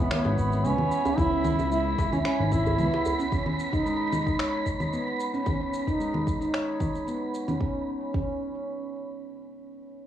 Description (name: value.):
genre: organic downtempo.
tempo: 112 BPM.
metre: 4/4.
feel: straight.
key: C# minor pentatonic.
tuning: A4 = 440 Hz.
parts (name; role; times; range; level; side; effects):
warm duduk; melody; 0.0-3.3 s; B3 to E4; -28 LUFS; right 1 dB; cassette tape, tape echo, plate reverb.
handpan; arpeggios; 0.0-8.3 s; G#3 to C#5; -30 LUFS; equal; cassette tape, tape echo, plate reverb.
wind-like tuned noise texture; texture; 0.0-7.6 s; B5; -34 LUFS; right 2 dB; built-in reverb, cassette tape, plate reverb.
electronic finger snaps, congas and shaker; drums; 0.1-7.6 s; none; -32 LUFS; equal; none.
smooth synth bass; bass; 0.2-2.9 s; G#1 to C#2; -27 LUFS; equal; none.
djembe; percussion; 0.2-3.2 s; none; -34 LUFS; left 1 dB; none.
electronic kick drum; drums; 0.4-8.3 s; none; -30 LUFS; equal; none.
room: wet small room reverb, RT60 0.5 s.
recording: home recording on cassette, small room reverb.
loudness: -24 LUFS.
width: side -10 dB against mid.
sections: 0.0-7.6 A section; 7.6-10.1 B section.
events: none.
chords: 0.0 C#m7; 3.3 N.C..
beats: 0.11 0.64 | 1.18 1.71 2.25 2.79 | 3.32 3.86 4.39 4.93 | 5.46 6.00 6.54 7.07 | 7.61 8.14.